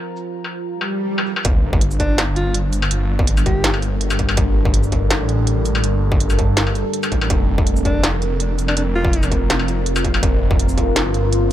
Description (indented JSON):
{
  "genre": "half-time drum and bass",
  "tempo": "164 BPM",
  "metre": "4/4",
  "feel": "half-time",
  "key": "G minor",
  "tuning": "A4 = 440 Hz",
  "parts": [
    { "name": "deep dark ambient pad", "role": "sustained chords", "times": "0.0-11.5 s", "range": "G3 to Bb5", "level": "-24 LUFS", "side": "equal", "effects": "chorus, built-in reverb, sidechain pumping" },
    { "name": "industrial drum kit", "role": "drums", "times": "0.2-11.4 s", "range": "hi-hat, shaker, snare drum, struck metal", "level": "-22 LUFS", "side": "left 1 dB", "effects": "low-pass filter on perc, low-pass filter on hats, low-pass filter on snare, low-pass filter on room" },
    { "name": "swell and sub drop", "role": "sound effects", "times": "0.8-2.9 s", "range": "none", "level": "-25 LUFS", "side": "right 1 dB", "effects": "none" },
    { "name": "phased detuned saw bass", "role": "bass", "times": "1.4-11.5 s", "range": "F1 to A1", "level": "-19 LUFS", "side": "equal", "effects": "phaser" },
    { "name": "electronic kick drum", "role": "drums", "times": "1.4-10.9 s", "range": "none", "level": "-19 LUFS", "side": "equal", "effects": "distortion" },
    { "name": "mellow alto saxophone", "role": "melody", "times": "2.0-3.7, 7.9-9.3 s", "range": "D4 to G4", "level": "-26 LUFS", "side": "equal", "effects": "vintage 12-bit sampler grit, dub echo" }
  ],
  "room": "little or no reverb",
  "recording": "none",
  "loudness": "-16 LUFS",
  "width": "side -12 dB against mid",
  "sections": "0.0-1.4 A section; 1.4-11.5 B section",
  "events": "swell 0.8-1.4; drop 1.4-11.5; impact 1.4-2.9",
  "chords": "0.0 Fsus4; 1.4 Gm; 7.3 Fsus4",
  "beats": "0.35 0.71 1.08 | 1.45 1.81 2.18 2.54 | 2.91 3.28 3.64 4.01 | 4.37 4.74 5.11 5.47 | 5.84 6.20 6.57 6.93 | 7.30 7.67 8.03 8.40 | 8.76 9.13 9.50 9.86 | 10.23 10.59 10.96 11.32"
}